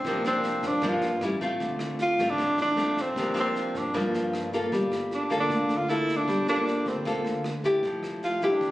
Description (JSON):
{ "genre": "bossa nova", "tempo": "154 BPM", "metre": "4/4", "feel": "straight", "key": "unclear", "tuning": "A4 = 440 Hz", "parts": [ { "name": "mellow tenor saxophone", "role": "melody", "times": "0.0-8.7 s", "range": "C4 to F4", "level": "-26 LUFS", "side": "right 1 dB", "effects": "none" }, { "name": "nylon-string guitar", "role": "accompaniment", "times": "0.0-8.7 s", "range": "G2 to A4", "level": "-28 LUFS", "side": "left 1 dB", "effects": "none" }, { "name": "upright bass", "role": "bass", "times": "0.0-8.7 s", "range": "F1 to G2", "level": "-38 LUFS", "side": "right 1 dB", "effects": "none" }, { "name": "vintage brush drum kit", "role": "drums", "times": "0.0-8.7 s", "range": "kick drum, rim click, snare drum", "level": "-39 LUFS", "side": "right 1 dB", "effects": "none" } ], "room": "light reverb", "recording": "recorded on a phone in the room, club reverb, compression", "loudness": "-24 LUFS", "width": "side -16 dB against mid", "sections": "0.0-8.7 A section", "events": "none", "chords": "0.1 C9sus4; 1.2 A7; 1.6 Dm7; 3.2 C9sus4; 4.7 Gm9; 7.8 Fmaj9" }